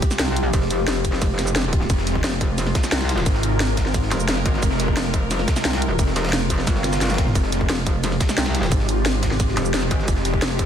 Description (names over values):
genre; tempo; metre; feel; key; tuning
dark technical drum and bass; 176 BPM; 4/4; straight; F minor; A4 = 441 Hz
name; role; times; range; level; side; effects
swarming drone; sustained chords; 0.0-10.7 s; C3 to Bb4; -25 LUFS; equal; built-in reverb, sidechain pumping
breakbeat sampler-style drum kit; drums; 0.0-10.7 s; hi-hat, ride cymbal, snare drum; -32 LUFS; equal; none
drum and bass drum kit; drums; 0.0-10.7 s; hi-hat, ride cymbal, shaker, snare drum, toms; -25 LUFS; equal; small room reverb
electronic kick drum; drums; 0.0-10.7 s; none; -21 LUFS; equal; small room reverb
metallic wobble bass; bass; 0.2-10.7 s; F1 to C2; -23 LUFS; equal; distortion, chorus, tube saturation
wide detuned saw bass; bass; 1.9-10.4 s; F1 to Ab1; -23 LUFS; equal; chorus, overdrive, sidechain pumping
swell; sound effects; 6.8-7.4 s; none; -30 LUFS; right 1 dB; none
room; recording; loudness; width
digital ambience; dense, heavily limited modern master; -18 LUFS; side -9 dB against mid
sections
0.0-10.7 A section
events
swell 6.8-7.4; drum fill 7.0-7.4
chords
0.0 Fmadd9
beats
0.19 | 0.54 0.88 1.22 1.56 | 1.90 2.24 2.58 2.92 | 3.26 3.60 3.94 4.29 | 4.63 4.97 5.31 5.65 | 5.99 6.33 6.67 7.01 | 7.35 7.69 8.04 8.38 | 8.72 9.06 9.40 9.74 | 10.08 10.42